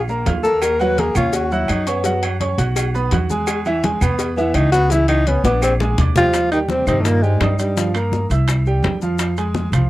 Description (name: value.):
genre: Afro-Cuban jazz.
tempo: 168 BPM.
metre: 4/4.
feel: straight.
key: Eb major from 6.3 s.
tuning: A4 = 440 Hz.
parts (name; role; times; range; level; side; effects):
warm baby grand piano; accompaniment; 0.0-9.9 s; Eb3 to F#6; -22 LUFS; right 2 dB; none.
upright bass; bass; 0.0-9.9 s; Bb1 to G2; -20 LUFS; equal; none.
congas; percussion; 0.1-9.9 s; none; -25 LUFS; equal; none.
maracas; percussion; 0.1-9.9 s; none; -34 LUFS; left 8 dB; none.
cowbell and bongos; percussion; 0.3-9.7 s; none; -27 LUFS; left 6 dB; none.
timbales and agogo bells; percussion; 0.3-9.9 s; none; -30 LUFS; right 7 dB; none.
breathy tenor saxophone; melody; 0.4-7.9 s; G3 to B4; -18 LUFS; left 2 dB; none.
claves; percussion; 0.6-9.9 s; none; -34 LUFS; right 2 dB; none.
breathy trombone; second line; 6.2-7.9 s; G2 to E#3; -23 LUFS; right 5 dB; none.
room: little or no reverb.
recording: dry, close 1970s-style studio recording.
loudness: -15 LUFS.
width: side -16 dB against mid.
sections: 0.0-6.3 A section; 6.3-9.9 B section.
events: tenor saxophone solo 0.0-6.3; drum fill 5.4-6.3.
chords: 0.0 A#5; 0.6 D#m7; 2.1 F#5; 2.8 B5; 3.5 E; 4.9 C#m7; 5.6 A#7; 6.3 Eb; 7.8 C7; 8.5 C; 9.2 Fm.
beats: 0.26 | 0.62 0.98 1.34 1.69 | 2.05 2.41 2.77 3.12 | 3.48 3.84 4.20 4.55 | 4.91 5.27 5.62 5.98 | 6.34 6.69 7.05 7.41 | 7.77 8.12 8.48 8.84 | 9.20 9.55.